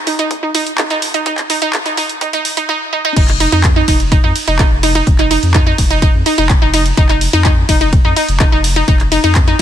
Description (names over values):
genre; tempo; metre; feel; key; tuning
progressive house; 126 BPM; 4/4; straight; unclear; A4 = 439 Hz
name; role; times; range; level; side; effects
glassy wavetable pluck; arpeggios; 0.1-9.6 s; Eb4; -15 LUFS; right 1 dB; chorus, sidechain pumping, ping-pong delay
electronic kick drum; drums; 0.1-9.6 s; none; -12 LUFS; equal; high-pass filter on kick
pop drum kit; drums; 0.1-9.6 s; crash cymbal, handclaps, hi-hat, ride cymbal; -19 LUFS; right 1 dB; none
saturated sub bass; bass; 3.2-9.6 s; F1 to F2; -16 LUFS; equal; tube saturation, sidechain pumping
room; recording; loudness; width
digital ambience; dense, heavily limited modern master, high-pass filter; -10 LUFS; side -10 dB against mid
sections
0.0-3.2 A section; 3.2-9.6 B section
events
build-up 0.0-3.2; drop 3.2-9.6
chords
0.0 N.C.; 3.2 Ebsus2/F